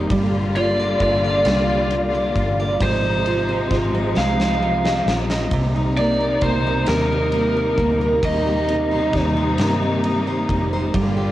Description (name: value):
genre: six-eight pop ballad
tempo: 44 BPM (dotted quarters)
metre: 6/8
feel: straight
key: unclear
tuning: A4 = 439 Hz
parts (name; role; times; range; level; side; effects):
- picked steel-string acoustic guitar; accompaniment; 0.0-11.3 s; C3 to Eb5; -23 LUFS; right 2 dB; plate reverb
- warm studio string section; sustained chords; 0.0-11.3 s; C3 to F4; -23 LUFS; left 2 dB; none
- vintage muted fingered electric bass; bass; 0.0-11.3 s; F1 to G2; -25 LUFS; equal; none
- huge arena drum kit; drums; 0.1-11.2 s; kick drum, ride cymbal, snare drum; -27 LUFS; left 1 dB; cassette tape
- lead guitar through a small cranked amp; melody; 0.6-9.2 s; Bb4 to F5; -22 LUFS; equal; overdrive, cassette tape, plate reverb, analog delay
room: moderate studio ambience, RT60 0.5 s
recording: home recording on cassette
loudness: -17 LUFS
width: side -14 dB against mid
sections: 0.0-11.3 A section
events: drum fill 4.2-5.5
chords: 0.1 Gm7; 2.8 Ab6; 5.5 Cm7; 8.2 Eb6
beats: | 0.10 1.46 | 2.81 4.16 | 5.52 6.87 | 8.23 9.58 | 10.94